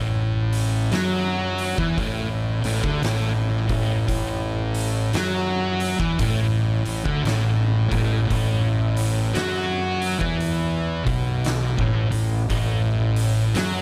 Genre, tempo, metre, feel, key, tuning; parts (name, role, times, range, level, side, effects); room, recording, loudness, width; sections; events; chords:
stoner and doom metal; 57 BPM; 4/4; swing 63% on 8ths; A4 = 440 Hz
thick fuzz guitar; riff; 0.0-13.8 s; A2 to F#3; -25 LUFS; equal; distortion
thick fuzz guitar; riff; 0.0-13.8 s; A2 to F#3; -29 LUFS; equal; distortion
fuzz fingered electric bass; bass; 0.0-13.8 s; A1 to F#2; -30 LUFS; equal; overdrive, tube saturation
oversized low-tuned drum kit; drums; 0.5-13.8 s; hi-hat, kick drum, snare drum; -32 LUFS; equal
small room ambience; -22 LUFS; mono
0.0-13.8 A section
0.0 A5